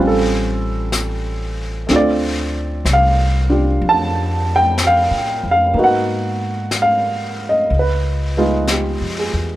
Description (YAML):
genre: jazz ballad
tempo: 62 BPM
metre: 4/4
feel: swing 69% on 8ths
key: unclear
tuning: A4 = 441 Hz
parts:
  - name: warm baby grand piano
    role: accompaniment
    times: 0.0-9.6 s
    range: G3 to A5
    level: -16 LUFS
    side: right 1 dB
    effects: none
  - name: upright bass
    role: bass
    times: 0.0-9.6 s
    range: A1 to A2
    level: -20 LUFS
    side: equal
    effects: none
  - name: vintage brush drum kit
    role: drums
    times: 0.9-9.6 s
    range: brushed snare drum, hi-hat, snare drum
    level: -26 LUFS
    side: left 2 dB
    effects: none
room: light reverb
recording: none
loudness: -15 LUFS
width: side -15 dB against mid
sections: 0.0-9.6 A section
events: none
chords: 0.0 A7alt; 1.9 Dm7; 5.7 Abm7; 7.7 Db9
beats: 0.93 | 1.89 2.86 3.82 4.78 | 5.74 6.71 7.69 8.67